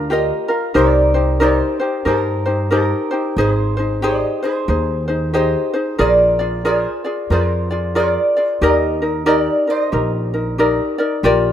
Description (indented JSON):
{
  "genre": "Hawaiian",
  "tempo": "92 BPM",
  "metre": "4/4",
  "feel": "swing 61% on 8ths",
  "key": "Eb major",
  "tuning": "A4 = 442 Hz",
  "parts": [
    { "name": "ukulele", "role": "accompaniment", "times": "0.0-11.5 s", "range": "D4 to D5", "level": "-17 LUFS", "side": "left 2 dB", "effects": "none" },
    { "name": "upright bass", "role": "bass", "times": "0.0-11.5 s", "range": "Ab1 to G2", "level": "-20 LUFS", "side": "right 1 dB", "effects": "none" },
    { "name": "lap resonator guitar", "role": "melody", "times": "0.1-10.6 s", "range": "F4 to Eb5", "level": "-20 LUFS", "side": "right 2 dB", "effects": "none" }
  ],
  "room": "light reverb, studio ambience",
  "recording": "rough home demo mix",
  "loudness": "-15 LUFS",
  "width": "side -10 dB against mid",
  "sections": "0.0-11.2 A section",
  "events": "none",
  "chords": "0.0 Gm7; 0.8 Cm7; 3.4 Abmaj7; 6.0 Bb7; 8.6 Ebmaj7",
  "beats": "0.10 | 0.75 1.41 2.06 2.72 | 3.37 4.03 4.68 5.34 | 6.00 6.65 7.31 7.97 | 8.62 9.28 9.93 10.59 | 11.25"
}